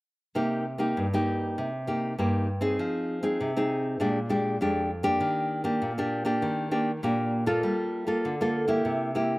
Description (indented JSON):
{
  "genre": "samba",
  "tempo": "99 BPM",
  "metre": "4/4",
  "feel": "straight",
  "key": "C minor",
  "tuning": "A4 = 440 Hz",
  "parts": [
    { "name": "nylon-string guitar", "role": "solo", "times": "0.3-9.4 s", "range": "F2 to A4", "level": "-25 LUFS", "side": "equal", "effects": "none" }
  ],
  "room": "little or no reverb",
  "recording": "recorded outdoors, with no room sound",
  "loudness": "-25 LUFS",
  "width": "side -21 dB against mid",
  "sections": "0.4-9.4 A section",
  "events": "none",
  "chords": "0.4 Cm7; 2.8 Fm7; 4.0 Bb6; 5.2 Ebmaj7; 7.6 Gm9; 8.9 C7"
}